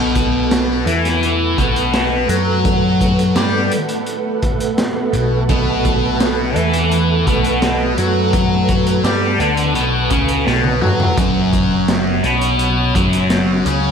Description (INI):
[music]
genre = psychedelic rock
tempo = 84 BPM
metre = 4/4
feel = straight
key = unclear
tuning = A4 = 441 Hz
[part]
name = string machine, cellos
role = sustained chords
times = 0.0-13.9 s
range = F#3 to F#5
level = -22 LUFS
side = right 4 dB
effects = ensemble chorus
[part]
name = thick fuzz guitar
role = riff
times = 0.0-13.9 s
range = F#2 to G4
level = -16 LUFS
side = left 1 dB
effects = distortion, phaser
[part]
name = picked electric bass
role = bass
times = 0.0-13.9 s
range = F#1 to G2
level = -21 LUFS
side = equal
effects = none
[part]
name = crunchy breakbeat drum kit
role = drums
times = 0.2-13.8 s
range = hi-hat, kick drum, snare drum, toms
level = -20 LUFS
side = equal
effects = none
[sound]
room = moderate plate reverb, RT60 3.5 s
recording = dreamy mix soaked in reverb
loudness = -13 LUFS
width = side -7 dB against mid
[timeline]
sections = 0.0-13.9 A section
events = drum fill 10.5-11.2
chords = 0.0 B7(no3); 11.2 F#5